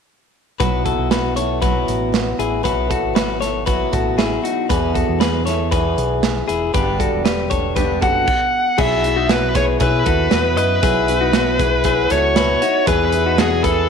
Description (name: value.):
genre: jangly indie pop.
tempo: 117 BPM.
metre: 4/4.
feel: straight.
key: unclear.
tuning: A4 = 440 Hz.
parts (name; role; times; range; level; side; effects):
picked steel-string acoustic guitar; accompaniment; 0.6-13.9 s; E2 to G#4; -24 LUFS; right 10 dB; none.
direct-recorded clean electric guitar; arpeggios; 0.6-13.9 s; B3 to D#5; -20 LUFS; left 10 dB; none.
fingered electric bass; bass; 0.6-13.9 s; E1 to B2; -23 LUFS; equal; none.
modern studio drum kit; drums; 0.6-13.8 s; crash cymbal, hi-hat, kick drum, snare drum; -21 LUFS; right 3 dB; none.
bluesy overdriven lead guitar; melody; 8.0-13.9 s; G#4 to F#5; -18 LUFS; equal; distortion, slapback echo.
room: moderate echo chamber reverb, RT60 2.1 s.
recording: 1960s-style stereo with parts hard left and right.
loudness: -15 LUFS.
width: side -6 dB against mid.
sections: 0.6-8.8 A section; 8.8-13.9 B section.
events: none.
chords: 0.6 Bsus4; 4.7 E; 6.7 G; 8.8 Bsus4; 12.9 E.